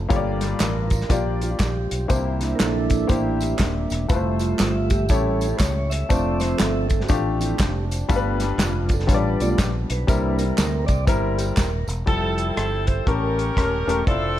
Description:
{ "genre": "uptempo gospel", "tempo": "120 BPM", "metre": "4/4", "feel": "swing 62% on 8ths", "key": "F major", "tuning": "A4 = 440 Hz", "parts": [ { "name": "mellow French horn section", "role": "sustained chords", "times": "0.0-14.4 s", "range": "E3 to E5", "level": "-36 LUFS", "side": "equal", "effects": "none" }, { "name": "fingered electric bass", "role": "bass", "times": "0.0-14.4 s", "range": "Eb1 to D2", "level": "-25 LUFS", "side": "equal", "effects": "none" }, { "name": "clear grand piano", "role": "accompaniment", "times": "0.1-14.4 s", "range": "G2 to D5", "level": "-26 LUFS", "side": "left 5 dB", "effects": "none" }, { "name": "mellow tonewheel organ", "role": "sustained chords", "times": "0.1-14.4 s", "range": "F3 to E6", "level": "-27 LUFS", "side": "right 3 dB", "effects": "slow rotary speaker" }, { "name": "warm soul drum kit", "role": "drums", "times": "0.1-14.2 s", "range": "hi-hat, kick drum, rim click, snare drum", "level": "-23 LUFS", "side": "equal", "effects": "none" }, { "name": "tambourine and handclaps", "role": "percussion", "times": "0.1-12.0 s", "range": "none", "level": "-34 LUFS", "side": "right 4 dB", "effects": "none" }, { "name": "edgy saxophone section", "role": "melody", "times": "12.1-14.4 s", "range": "C4 to C5", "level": "-26 LUFS", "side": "right 1 dB", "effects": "none" } ], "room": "light reverb, small room reverb", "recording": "none", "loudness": "-19 LUFS", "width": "side -12 dB against mid", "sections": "0.0-12.1 A section; 12.1-14.4 B section", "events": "tonewheel organ solo 0.0-12.1", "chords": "0.1 Gm7; 2.1 C7; 4.1 Fmaj7; 5.1 A7; 6.1 Dm7/F; 8.1 G7; 10.1 C7; 12.1 Fmaj9; 13.1 A7b9", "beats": "| 0.10 0.60 1.10 1.60 | 2.10 2.60 3.10 3.60 | 4.10 4.60 5.10 5.60 | 6.10 6.60 7.10 7.59 | 8.09 8.59 9.09 9.59 | 10.08 10.58 11.08 11.58 | 12.08 12.57 13.07 13.57 | 14.07" }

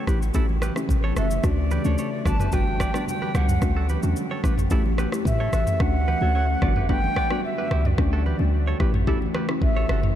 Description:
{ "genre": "afrobeats", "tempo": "110 BPM", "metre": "4/4", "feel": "straight", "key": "D major", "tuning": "A4 = 437 Hz", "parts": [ { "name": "deep dark ambient pad", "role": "sustained chords", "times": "0.0-10.2 s", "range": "C#3 to G4", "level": "-31 LUFS", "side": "equal", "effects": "chorus, built-in reverb, sidechain pumping" }, { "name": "direct-recorded clean electric guitar", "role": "riff", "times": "0.0-10.0 s", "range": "E4 to D5", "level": "-35 LUFS", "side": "right 4 dB", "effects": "ping-pong delay" }, { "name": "hollow square pluck", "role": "accompaniment", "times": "0.1-9.6 s", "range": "G3 to G4", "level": "-30 LUFS", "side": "left 2 dB", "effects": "chorus" }, { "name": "clean 808-style bass", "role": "bass", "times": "0.1-10.1 s", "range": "F#1 to A2", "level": "-23 LUFS", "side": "equal", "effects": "none" }, { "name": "afro-pop drum kit", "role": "drums", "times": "0.1-10.2 s", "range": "kick drum, rim click, shaker, toms", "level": "-26 LUFS", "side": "equal", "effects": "none" }, { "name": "congas", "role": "percussion", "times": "0.1-10.0 s", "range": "none", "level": "-34 LUFS", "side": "right 2 dB", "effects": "none" }, { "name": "concert flute", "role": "melody", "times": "1.2-10.1 s", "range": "D5 to A5", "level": "-30 LUFS", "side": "equal", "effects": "ping-pong delay" } ], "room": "moderate huge ambient reverb, RT60 8.1 s", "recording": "dreamy mix soaked in reverb", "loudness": "-20 LUFS", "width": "side -11 dB against mid", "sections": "0.0-5.8 A section; 5.8-10.2 B section", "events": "hi-hats muted 5.8-10.2", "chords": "0.1 A7; 1.4 Dmaj7; 2.3 Gmaj7; 3.6 Dmaj7; 4.4 A7; 5.8 Dmaj7; 6.6 Gmaj7; 8.0 Dmaj7; 8.8 A7", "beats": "0.35 0.89 | 1.44 1.98 2.53 3.07 | 3.62 4.16 4.71 5.25 | 5.80 6.35 6.89 7.44 | 7.98 8.53 9.07 9.62" }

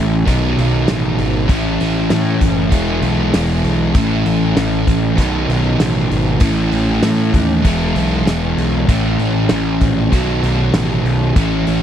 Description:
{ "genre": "classic rock", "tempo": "98 BPM", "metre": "4/4", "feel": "straight", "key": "A lydian", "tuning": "A4 = 440 Hz", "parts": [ { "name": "sludgy distorted guitar", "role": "riff", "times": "0.0-11.8 s", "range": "A2 to F#4", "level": "-16 LUFS", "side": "right 1 dB", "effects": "overdrive" }, { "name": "fuzz picked electric bass", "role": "bass", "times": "0.0-11.8 s", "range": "E1 to A2", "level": "-19 LUFS", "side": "equal", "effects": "overdrive" }, { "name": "damped 70s drum kit", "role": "drums", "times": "0.3-11.8 s", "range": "hi-hat, kick drum, snare drum", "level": "-15 LUFS", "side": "equal", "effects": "none" } ], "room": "little or no reverb", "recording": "dry, close 1970s-style studio recording", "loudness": "-13 LUFS", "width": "side -10 dB against mid", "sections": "0.0-11.8 A section", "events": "none", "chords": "0.3 B; 1.5 A; 2.7 E; 4.0 A; 5.2 B; 6.4 A; 7.6 E; 8.9 A; 10.1 B", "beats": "0.27 0.88 | 1.50 2.11 2.72 3.34 | 3.95 4.57 5.18 5.80 | 6.41 7.03 7.65 8.26 | 8.88 9.50 10.11 10.73 | 11.35" }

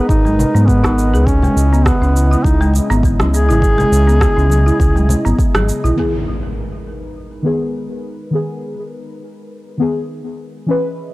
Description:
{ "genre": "organic downtempo", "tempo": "102 BPM", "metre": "4/4", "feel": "swing 55% on 16ths", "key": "G# minor", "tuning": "A4 = 440 Hz", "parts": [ { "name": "mellow duduk", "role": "melody", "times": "0.0-5.3 s", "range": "B3 to G#4", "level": "-18 LUFS", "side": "equal", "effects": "tape echo" }, { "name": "warm analog pad", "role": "sustained chords", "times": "0.0-11.1 s", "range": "C#3 to E5", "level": "-25 LUFS", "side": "equal", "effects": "chorus, sidechain pumping" }, { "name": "folk marimba with medium hard mallets", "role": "arpeggios", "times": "0.0-6.0 s", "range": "G#3 to G#4", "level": "-20 LUFS", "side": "equal", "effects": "tape echo" }, { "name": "round analog bass", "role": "bass", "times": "0.1-5.9 s", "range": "G#1 to G#2", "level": "-14 LUFS", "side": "equal", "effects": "sidechain pumping" }, { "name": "electronic cabasa and rim click", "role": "drums", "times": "0.1-6.0 s", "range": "none", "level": "-24 LUFS", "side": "right 1 dB", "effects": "none" }, { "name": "electronic kick drum", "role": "drums", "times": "0.1-5.5 s", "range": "none", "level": "-16 LUFS", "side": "equal", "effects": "none" }, { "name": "congas", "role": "percussion", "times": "0.3-6.0 s", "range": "none", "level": "-23 LUFS", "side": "left 1 dB", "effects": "none" }, { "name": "deep mellow chord stab", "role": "accompaniment", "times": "6.0-11.1 s", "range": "D#3 to B4", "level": "-20 LUFS", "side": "left 2 dB", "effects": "chorus, phaser, sidechain pumping, tape echo" }, { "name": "impact", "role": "sound effects", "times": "6.0-8.3 s", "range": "none", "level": "-26 LUFS", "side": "equal", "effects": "none" } ], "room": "little or no reverb", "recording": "dry, gritty hardware recording", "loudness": "-12 LUFS", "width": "side -19 dB against mid", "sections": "0.0-6.0 A section; 6.0-11.1 B section", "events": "impact 6.0-8.3; filter sweep on analog synth pad 6.0-11.1", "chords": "0.0 G#m; 1.3 C#m7; 6.0 G#m", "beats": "0.09 0.68 | 1.27 1.86 2.45 3.04 | 3.62 4.21 4.80 5.39 | 5.98 6.57 7.15 7.74 | 8.33 8.92 9.51 10.09 | 10.68" }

